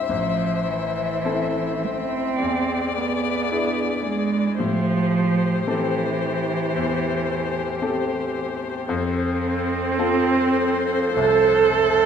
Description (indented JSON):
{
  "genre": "classical, slow romantic movement for piano quartet",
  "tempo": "55 BPM",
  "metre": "4/4",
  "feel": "rubato",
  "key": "unclear",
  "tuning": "A4 = 440 Hz",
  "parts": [
    { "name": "dark violin", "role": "melody", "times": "0.0-12.1 s", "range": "C5 to E5", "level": "-27 LUFS", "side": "left 8 dB", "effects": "none" },
    { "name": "bright grand piano", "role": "accompaniment", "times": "0.0-12.1 s", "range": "A1 to A4", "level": "-26 LUFS", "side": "left 3 dB", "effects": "none" },
    { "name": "warm viola", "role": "accompaniment", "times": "0.0-12.1 s", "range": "G4 to C5", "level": "-29 LUFS", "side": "right 2 dB", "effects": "none" },
    { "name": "warm cello", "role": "second line", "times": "0.1-12.1 s", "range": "E3 to A4", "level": "-22 LUFS", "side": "right 5 dB", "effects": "none" }
  ],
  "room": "wet recital hall reverb, RT60 1.8 s",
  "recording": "none",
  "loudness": "-20 LUFS",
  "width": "side -8 dB against mid",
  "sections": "0.0-12.1 A section",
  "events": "none",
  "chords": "0.1 Am; 2.4 E7; 4.6 Am7; 8.9 F"
}